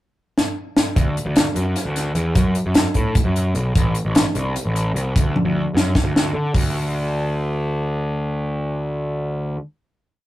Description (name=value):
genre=math rock and midwest emo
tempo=302 BPM (eighths)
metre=7/8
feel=straight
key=D major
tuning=A4 = 440 Hz
part: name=crisp fusion drum kit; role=drums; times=0.4-6.6 s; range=hi-hat, kick drum, snare drum, toms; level=-18 LUFS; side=equal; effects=none
part: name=fuzz picked electric bass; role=bass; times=1.0-9.6 s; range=A1 to D3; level=-21 LUFS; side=equal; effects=overdrive
room=moderate booth ambience, RT60 0.2 s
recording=rough rehearsal-room recording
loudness=-18 LUFS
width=side -15 dB against mid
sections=0.0-1.0 pickup bar; 1.0-6.5 A section; 6.5-9.3 final note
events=drum fill 0.4-1.0, 5.4-6.5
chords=none